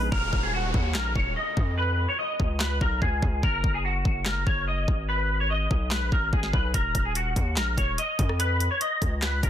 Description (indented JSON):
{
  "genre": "hip hop, trap",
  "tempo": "145 BPM",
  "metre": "4/4",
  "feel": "half-time",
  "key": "Eb minor",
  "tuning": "A4 = 440 Hz",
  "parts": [
    { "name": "clean electric guitar", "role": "melody", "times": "0.0-9.5 s", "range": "Gb4 to Eb5", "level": "-28 LUFS", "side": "equal", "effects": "ensemble chorus, low-pass filter" },
    { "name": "distorted 808-style bass", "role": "bass", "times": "0.0-9.5 s", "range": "Eb1 to F2", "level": "-28 LUFS", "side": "equal", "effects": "distortion" },
    { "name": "trap drum kit", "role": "drums", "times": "0.1-9.5 s", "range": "handclaps, hi-hat, kick drum, rim click, snare drum", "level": "-27 LUFS", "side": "equal", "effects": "soft clipping on snare" },
    { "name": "downlifter", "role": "sound effects", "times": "0.1-3.4 s", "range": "none", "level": "-36 LUFS", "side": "equal", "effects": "none" }
  ],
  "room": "little or no reverb",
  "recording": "dense, heavily limited modern master",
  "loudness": "-23 LUFS",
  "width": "side -10 dB against mid",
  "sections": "0.1-9.5 A section",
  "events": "hi-hats muted 0.1-6.7",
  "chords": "0.1 Ebm; 1.8 Dbadd9; 3.4 Gb69; 5.1 Abm; 6.7 Ebm; 8.4 Dbadd9",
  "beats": "| 0.12 0.54 0.95 1.36 | 1.78 2.19 2.60 3.02 | 3.43 3.85 4.26 4.67 | 5.09 5.50 5.92 6.33 | 6.74 7.16 7.57 7.98 | 8.40 8.81 9.22"
}